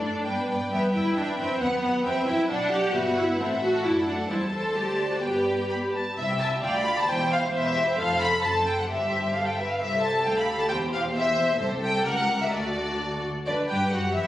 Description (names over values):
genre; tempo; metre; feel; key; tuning
quick classical-period movement for string orchestra; 133 BPM; 2/4; straight; G major, C major from 6.2 s; A4 = 440 Hz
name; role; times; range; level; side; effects
warm studio violin section; melody; 0.0-14.3 s; C5 to B5; -27 LUFS; left 1 dB; none
warm studio violin section; second line; 0.0-14.3 s; D4 to G5; -31 LUFS; equal; none
rich studio viola section; accompaniment; 0.0-14.3 s; B3 to E5; -28 LUFS; equal; none
dark studio cello section; bass; 0.0-14.3 s; C2 to B3; -32 LUFS; equal; none
rich studio double bass section; bass; 0.0-14.3 s; E1 to G2; -36 LUFS; equal; none
room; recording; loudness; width
wet recital hall reverb, RT60 1.4 s; recorded on a phone in the room, studio reverb; -23 LUFS; side -13 dB against mid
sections
0.0-6.2 A section; 6.2-13.5 B section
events
none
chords
0.3 G; 0.7 Em; 1.6 B; 2.0 Em; 2.5 Bm; 2.9 Em/G; 3.4 Am; 3.8 D/F#; 4.3 C/E; 4.8 D5; 5.2 G; 6.2 C; 6.6 G7/D; 7.1 C/E; 8.0 F; 8.4 F#dim; 8.9 C/G; 9.8 C; 10.3 G7/D; 10.7 C/E; 11.6 Am7/C; 12.1 F#7b9/C#; 12.5 D; 13.5 G